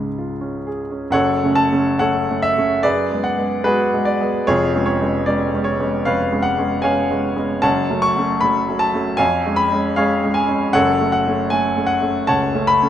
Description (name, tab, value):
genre	classical, romantic character piece for solo piano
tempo	60-81 BPM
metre	4/4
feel	rubato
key	F# minor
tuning	A4 = 440 Hz
part	warm grand piano	solo	0.0-12.9 s	E#1 to C#6	-16 LUFS	equal	none
room	moderate concert hall reverb, RT60 1.8 s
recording	none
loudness	-16 LUFS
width	side -10 dB against mid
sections	0.0-1.1 A section; 1.1-12.9 B section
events	none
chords	0.0 C#; 1.1 F#m; 2.8 Bm6/F#; 4.5 C#7/E#; 7.6 F#m; 9.2 C#/E#; 10.7 F#m